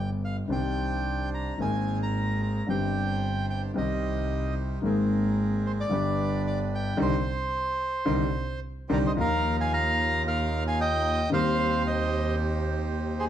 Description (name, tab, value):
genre	tango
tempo	112 BPM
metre	4/4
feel	rubato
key	C minor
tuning	A4 = 440 Hz
part	bandoneon	melody	0.0-13.3 s	Ab4 to Bb5	-29 LUFS	right 1 dB	plate reverb
part	warm concert grand piano	accompaniment	0.0-13.3 s	G1 to Ab4	-29 LUFS	left 2 dB	none
part	clear double bass	bass	0.0-13.3 s	G1 to Eb2	-30 LUFS	right 1 dB	none
part	bandoneon	stabs	0.5-13.3 s	C4 to C5	-37 LUFS	right 5 dB	none
room	moderate large studio reverb, RT60 0.9 s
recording	none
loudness	-25 LUFS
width	side -10 dB against mid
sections	0.0-9.2 A section; 9.2-13.3 B section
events	band accent 7.0-9.2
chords	0.0 G; 0.5 Cmadd9; 1.6 Abadd9; 2.7 Gsus4; 3.8 Cm; 4.8 Abadd9; 5.9 G; 7.0 Cmadd9; 9.2 Ebsus2; 11.3 Cm/Eb